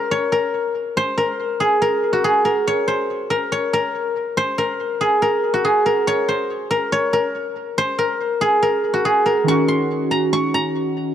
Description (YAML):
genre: hip hop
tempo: 141 BPM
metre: 4/4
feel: half-time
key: Eb dorian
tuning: A4 = 443 Hz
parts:
  - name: guzheng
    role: melody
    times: 0.0-11.1 s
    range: Gb4 to Db6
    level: -17 LUFS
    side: equal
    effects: none
  - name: warbly lo-fi synth keys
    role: accompaniment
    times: 9.4-11.1 s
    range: Eb3 to Gb4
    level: -19 LUFS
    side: right 1 dB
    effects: chorus, phaser
room: little or no reverb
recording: dry, gritty hardware recording, cassette tape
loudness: -17 LUFS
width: side -10 dB against mid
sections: 0.0-9.5 A section; 9.5-11.1 B section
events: none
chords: 0.0 N.C.; 9.5 Ebm7